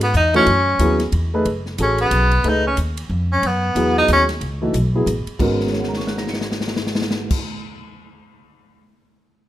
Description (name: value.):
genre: modal jazz.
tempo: 182 BPM.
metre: 3/4.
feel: swing 62% on 8ths.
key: unclear.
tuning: A4 = 440 Hz.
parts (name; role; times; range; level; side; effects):
clear tenor saxophone; melody; 0.0-4.2 s; B3 to D#4; -17 LUFS; equal; none.
upright bass; bass; 0.0-7.3 s; F#1 to G#2; -21 LUFS; equal; none.
swinging big-band drum kit; drums; 0.0-8.8 s; crash cymbal, hi-hat, kick drum, ride cymbal, snare drum; -26 LUFS; left 1 dB; none.
warm baby grand piano; accompaniment; 0.3-7.6 s; G#2 to C#7; -22 LUFS; equal; none.
room: light reverb.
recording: minimal, uncompressed stereo recording.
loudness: -16 LUFS.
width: side -13 dB against mid.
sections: 0.0-1.5 A section; 1.5-5.4 B section; 5.4-7.4 C section.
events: tenor saxophone solo 1.5-5.4; drum fill 5.6-7.3.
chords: 0.0 F#m11; 5.4 G#m11.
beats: 0.14 | 0.47 0.80 1.12 | 1.45 1.78 2.11 | 2.44 2.77 3.10 | 3.42 3.75 4.08 | 4.41 4.74 5.07 | 5.40 5.73 6.05 | 6.38 6.71 7.04.